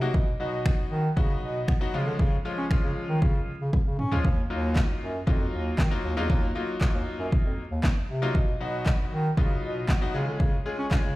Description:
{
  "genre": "dance-pop",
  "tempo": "117 BPM",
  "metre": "4/4",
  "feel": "straight",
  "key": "Eb minor",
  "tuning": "A4 = 440 Hz",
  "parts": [
    { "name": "bright grand piano", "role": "accompaniment", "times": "0.0-11.2 s", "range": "F3 to Ab4", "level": "-32 LUFS", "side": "left 2 dB", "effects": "sidechain pumping" },
    { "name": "warm bass clarinet", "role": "bass", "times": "0.0-11.1 s", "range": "Eb2 to Db4", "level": "-29 LUFS", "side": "equal", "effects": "sidechain pumping" },
    { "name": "punchy analog drum machine", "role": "drums", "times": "0.1-11.0 s", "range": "finger snaps, handclaps, kick drum, snare drum, toms", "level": "-24 LUFS", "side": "equal", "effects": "overdrive" }
  ],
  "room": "studio ambience",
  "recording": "played on a big sound system in a bare room, large studio reverb",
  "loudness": "-24 LUFS",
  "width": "side -18 dB against mid",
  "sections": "0.0-11.2 A section",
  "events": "drum fill 3.7-4.2",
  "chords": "0.1 B; 1.9 Db; 4.2 Ebmadd9; 8.3 B; 10.1 Db",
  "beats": "| 0.14 0.66 1.17 1.68 | 2.19 2.71 3.22 3.73 | 4.25 4.76 5.27 5.79 | 6.30 6.81 7.32 7.84 | 8.35 8.86 9.37 9.89 | 10.40 10.91"
}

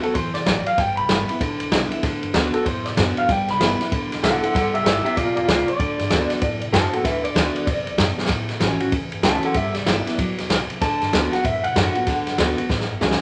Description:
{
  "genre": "rockabilly",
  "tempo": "191 BPM",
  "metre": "4/4",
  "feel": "swing 62% on 8ths",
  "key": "D mixolydian",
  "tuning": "A4 = 439 Hz",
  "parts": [
    { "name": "electric guitar through a small old amp", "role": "melody", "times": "0.0-12.6 s", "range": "F4 to B5", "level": "-26 LUFS", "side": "equal", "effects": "tremolo" },
    { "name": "picked steel-string acoustic guitar", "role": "accompaniment", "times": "0.0-13.2 s", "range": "E2 to F#4", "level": "-28 LUFS", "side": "equal", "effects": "none" },
    { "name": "upright bass", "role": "bass", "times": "0.0-13.2 s", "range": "E1 to G2", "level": "-31 LUFS", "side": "equal", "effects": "none" },
    { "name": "vintage drum kit", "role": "drums", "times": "0.0-13.2 s", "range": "kick drum, ride cymbal, snare drum", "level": "-24 LUFS", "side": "equal", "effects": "none" }
  ],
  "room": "moderate large studio reverb, RT60 1.2 s",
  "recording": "none",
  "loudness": "-21 LUFS",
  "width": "mono",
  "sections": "0.0-13.2 A section",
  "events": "clean electric guitar solo 0.0-13.2; drum fill 8.1, 12.7-13.2",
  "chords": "0.0 D6; 0.8 G6; 2.0 D6; 3.3 G6; 5.8 D6; 8.3 A6; 9.6 G6; 10.8 D6; 12.7 A6",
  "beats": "0.16 0.47 | 0.79 1.10 1.41 1.73 | 2.04 2.35 2.67 2.98 | 3.29 3.60 3.92 4.23 | 4.54 4.86 5.17 5.48 | 5.80 6.11 6.42 6.74 | 7.05 7.36 7.68 7.99 | 8.30 8.62 8.93 9.24 | 9.56 9.87 10.19 10.50 | 10.81 11.13 11.44 11.76 | 12.07 12.39 12.70 13.02"
}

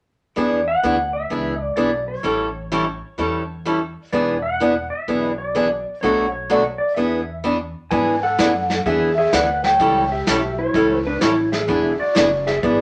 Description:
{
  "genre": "country, western swing",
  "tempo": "127 BPM",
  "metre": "4/4",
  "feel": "swing 66% on 8ths",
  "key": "E mixolydian",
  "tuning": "A4 = 438 Hz",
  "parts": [
    { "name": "clean lap steel guitar", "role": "melody", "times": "0.4-12.8 s", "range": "D4 to G#5", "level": "-23 LUFS", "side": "equal", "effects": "none" },
    { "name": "picked acoustic archtop guitar", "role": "accompaniment", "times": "0.4-12.8 s", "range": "B2 to A4", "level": "-22 LUFS", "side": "equal", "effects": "none" },
    { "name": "upright bass", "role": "bass", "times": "0.4-12.8 s", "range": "E1 to G#2", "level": "-33 LUFS", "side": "equal", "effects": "none" },
    { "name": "vintage brush drum kit", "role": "drums", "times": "7.9-12.8 s", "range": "brushed snare drum, hi-hat, kick drum, snare drum", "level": "-27 LUFS", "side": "equal", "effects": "none" }
  ],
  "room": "moderate studio reverb, RT60 0.6 s",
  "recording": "none",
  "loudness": "-20 LUFS",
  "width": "mono",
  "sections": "0.4-7.9 A section; 7.9-12.8 B section",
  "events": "none",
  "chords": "0.4 E7; 2.3 A7; 4.1 E7; 6.0 Bm7; 7.0 E7; 9.8 A7; 11.7 E7",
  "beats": "| 0.37 0.84 1.31 1.78 | 2.25 2.73 3.20 3.67 | 4.14 4.61 5.08 5.56 | 6.03 6.50 6.97 7.45 | 7.92 8.39 8.86 9.33 | 9.80 10.28 10.75 11.22 | 11.69 12.16 12.63"
}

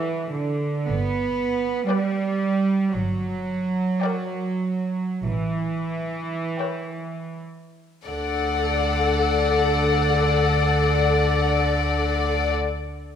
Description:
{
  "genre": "classical, slow romantic movement for string orchestra",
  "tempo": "38-61 BPM",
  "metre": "4/4",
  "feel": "rubato",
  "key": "D major",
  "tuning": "A4 = 439 Hz",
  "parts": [
    { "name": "dark chamber violin section", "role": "melody", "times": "0.0-12.5 s", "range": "F#5 to G5", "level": "-28 LUFS", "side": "left 6 dB", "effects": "none" },
    { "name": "warm symphonic violin section", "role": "second line", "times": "0.0-12.5 s", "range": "C#5 to D5", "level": "-26 LUFS", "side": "left 7 dB", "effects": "none" },
    { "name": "dark symphonic viola section", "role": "accompaniment", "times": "0.0-12.5 s", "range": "A4 to B4", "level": "-26 LUFS", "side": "left 2 dB", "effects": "none" },
    { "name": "rich symphonic cello section", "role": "bass", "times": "0.0-12.5 s", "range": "D3 to B3", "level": "-24 LUFS", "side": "right 3 dB", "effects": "none" },
    { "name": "dark chamber double bass section", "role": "bass", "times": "0.9-12.5 s", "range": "G1 to D2", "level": "-27 LUFS", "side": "right 1 dB", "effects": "none" }
  ],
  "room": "wet recital hall reverb, RT60 1.6 s",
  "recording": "none",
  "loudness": "-20 LUFS",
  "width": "side -8 dB against mid",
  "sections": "0.0-8.1 A section; 8.1-13.2 B section",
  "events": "slowing down 0.0-8.1",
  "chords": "0.0 D; 0.9 G; 2.9 Gm; 5.3 A9; 8.1 D",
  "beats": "0.89 1.90 | 2.93 4.04 5.26 6.61 | 8.07 9.37 10.67 11.96"
}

